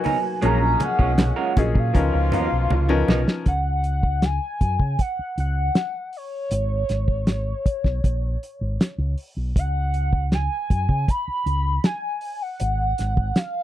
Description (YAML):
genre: lush 1970s-style soul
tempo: 79 BPM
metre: 4/4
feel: straight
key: unclear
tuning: A4 = 439 Hz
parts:
  - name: hollow square lead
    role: melody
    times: 0.0-13.6 s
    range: C#5 to B5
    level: -26 LUFS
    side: equal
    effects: chorus, phaser
  - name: bright baby grand piano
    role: accompaniment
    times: 0.0-3.5 s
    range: E#3 to A#4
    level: -26 LUFS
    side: left 4 dB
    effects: none
  - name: electric guitar through a small old amp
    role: riff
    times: 0.0-3.3 s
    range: E#3 to C#5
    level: -28 LUFS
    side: right 6 dB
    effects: none
  - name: cloth-damped thuddy drum kit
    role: drums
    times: 0.0-13.5 s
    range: hi-hat, kick drum, snare drum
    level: -20 LUFS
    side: equal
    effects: none
  - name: congas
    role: percussion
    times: 0.1-3.3 s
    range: none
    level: -28 LUFS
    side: right 2 dB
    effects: none
  - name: mellow horn section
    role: stabs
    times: 0.4-3.1 s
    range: A#2 to E#4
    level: -29 LUFS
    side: equal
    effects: none
  - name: fingered electric bass with an envelope filter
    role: bass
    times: 0.4-13.3 s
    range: G#1 to C#3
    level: -23 LUFS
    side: equal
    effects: none
room: little or no reverb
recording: dry, close 1970s-style studio recording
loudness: -20 LUFS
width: side -13 dB against mid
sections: 0.0-3.5 A section; 3.5-13.6 B section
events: drum fill 2.7-3.5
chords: 0.4 F#maj9/A#; 1.9 C#13; 3.5 C#sus4; 6.5 G#m; 9.6 C#7sus4; 12.6 G#7(no3)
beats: | 0.43 1.19 1.95 2.71 | 3.46 4.23 4.99 5.75 | 6.51 7.27 8.03 8.79 | 9.55 10.32 11.08 11.84 | 12.60 13.37